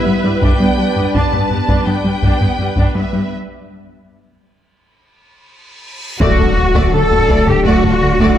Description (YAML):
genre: cinematic, hybrid orchestral and electronic film score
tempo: 83 BPM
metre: 4/4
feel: straight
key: unclear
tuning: A4 = 441 Hz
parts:
  - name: warm symphonic violin section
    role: melody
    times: 0.0-8.4 s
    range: F#4 to A5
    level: -24 LUFS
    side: left 1 dB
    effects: none
  - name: rich symphonic viola section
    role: accompaniment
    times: 0.0-8.4 s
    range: G3 to B4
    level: -20 LUFS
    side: right 2 dB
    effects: none
  - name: warm analog pad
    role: sustained chords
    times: 0.0-8.4 s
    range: F#3 to D5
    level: -21 LUFS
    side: left 1 dB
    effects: chorus
  - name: rubbery square bass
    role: riff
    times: 0.1-8.3 s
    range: D2 to G3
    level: -19 LUFS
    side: left 1 dB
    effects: none
  - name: warm symphonic cello section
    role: bass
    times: 0.1-8.4 s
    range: G2 to A4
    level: -19 LUFS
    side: right 1 dB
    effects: none
  - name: taiko ensemble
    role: drums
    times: 0.4-8.4 s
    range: none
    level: -19 LUFS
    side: equal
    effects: none
  - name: reverse cymbal and impact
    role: sound effects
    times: 5.9-8.4 s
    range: none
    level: -22 LUFS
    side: equal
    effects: none
  - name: warm symphonic violin section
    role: second line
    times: 6.2-8.4 s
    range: F#4 to D5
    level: -25 LUFS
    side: left 5 dB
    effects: none
  - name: mellow French horn section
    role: sustained chords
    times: 6.2-8.4 s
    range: F#4 to A4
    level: -20 LUFS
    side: left 5 dB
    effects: none
  - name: rich symphonic double bass section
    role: bass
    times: 6.2-8.3 s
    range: D2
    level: -22 LUFS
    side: right 3 dB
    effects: none
  - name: saturated sub bass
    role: bass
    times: 6.2-8.4 s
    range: D1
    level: -20 LUFS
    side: equal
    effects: none
room: moderate scoring stage reverb, RT60 1.9 s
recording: dark, warm production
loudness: -12 LUFS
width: side -11 dB against mid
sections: 0.0-6.2 A section; 6.2-8.4 B section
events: break 3.3-6.2; drum fill 5.5-6.2; reverse cymbal 5.9-6.2; impact 6.2-8.4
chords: 0.4 G; 3.3 N.C.; 6.2 D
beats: | 0.42 1.15 1.87 2.59 | 3.32 4.04 4.76 5.49 | 6.21 6.93 7.65 8.38